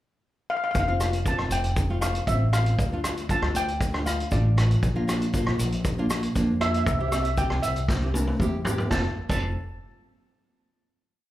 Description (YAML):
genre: calypso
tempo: 118 BPM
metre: 4/4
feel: straight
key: F major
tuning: A4 = 440 Hz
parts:
  - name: steel pan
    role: melody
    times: 0.5-9.5 s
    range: D5 to A5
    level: -29 LUFS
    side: equal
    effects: slapback echo
  - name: upright bass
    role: bass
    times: 0.7-9.5 s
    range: F1 to F2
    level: -26 LUFS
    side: equal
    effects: none
  - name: street-band drum kit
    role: drums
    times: 0.7-9.4 s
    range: crash cymbal, hi-hat, kick drum, rim click, snare drum, toms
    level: -28 LUFS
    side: equal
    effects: none
  - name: tube shaker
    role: percussion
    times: 0.7-9.5 s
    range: none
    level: -42 LUFS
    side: left 3 dB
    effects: none
  - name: nylon-string guitar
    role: accompaniment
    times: 0.9-9.5 s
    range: A3 to Bb4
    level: -30 LUFS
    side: right 1 dB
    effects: slapback echo
room: small room ambience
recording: live gig heard through the venue's PA, club reverb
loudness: -22 LUFS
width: side -14 dB against mid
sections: 0.0-0.8 pickup bar; 0.8-8.9 verse; 8.9-11.0 final chord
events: drum fill 7.9-8.9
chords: 0.0 N.C.; 0.8 F; 2.8 Dm; 4.8 Bb; 6.9 C; 8.9 F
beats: 0.25 | 0.76 1.26 1.77 2.28 | 2.79 3.30 3.80 4.31 | 4.82 5.33 5.84 6.36 | 6.87 7.38 7.89 8.40 | 8.91 9.43